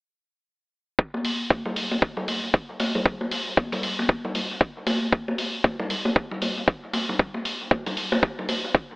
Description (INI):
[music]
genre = deep house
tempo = 116 BPM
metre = 4/4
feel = swing 59% on 16ths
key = none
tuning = none
[part]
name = electronic kick drum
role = drums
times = 1.0-8.9 s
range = none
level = -20 LUFS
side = equal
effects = none
[part]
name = congas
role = percussion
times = 1.1-8.6 s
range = none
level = -29 LUFS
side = equal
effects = dub echo
[part]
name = electronic hi-hat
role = drums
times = 1.2-8.6 s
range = none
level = -33 LUFS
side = equal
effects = none
[sound]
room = light reverb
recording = echo-heavy mix, telephone sound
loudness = -23 LUFS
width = side -25 dB against mid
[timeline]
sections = 1.0-9.0 A section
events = none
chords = none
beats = | 0.99 1.50 2.02 2.54 | 3.06 3.57 4.09 4.61 | 5.13 5.64 6.16 6.68 | 7.20 7.71 8.23 8.75